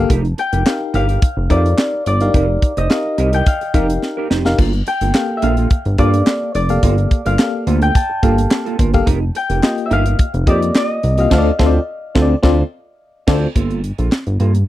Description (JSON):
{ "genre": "early-eighties boogie funk", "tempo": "107 BPM", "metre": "4/4", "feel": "straight", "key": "G minor", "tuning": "A4 = 440 Hz", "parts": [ { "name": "Celtic harp", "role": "melody", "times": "0.0-13.2 s", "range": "D5 to A5", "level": "-21 LUFS", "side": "left 1 dB", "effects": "none" }, { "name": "FM electric piano with auto-pan", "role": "accompaniment", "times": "0.0-13.5 s", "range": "Bb3 to F5", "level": "-20 LUFS", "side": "left 4 dB", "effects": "none" }, { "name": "chorused synth bass", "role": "bass", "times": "0.0-14.6 s", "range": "F1 to G2", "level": "-16 LUFS", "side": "equal", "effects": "none" }, { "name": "mellow electric guitar", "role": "riff", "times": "0.1-14.6 s", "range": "Bb3 to C5", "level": "-22 LUFS", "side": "right 7 dB", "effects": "analog chorus" }, { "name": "tight funk drum kit", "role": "drums", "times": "0.1-14.7 s", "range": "crash cymbal, handclaps, hi-hat, kick drum, snare drum", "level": "-16 LUFS", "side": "equal", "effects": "none" } ], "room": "little or no reverb", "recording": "dry, close 1970s-style studio recording", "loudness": "-13 LUFS", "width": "side -14 dB against mid", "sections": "0.0-13.6 A section; 13.6-14.7 B section", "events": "drum fill 4.0-4.6; band accent 11.3-13.6", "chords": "0.1 F9sus4; 4.6 Gm9; 9.1 F9sus4; 11.3 Dm7; 13.6 Gm9" }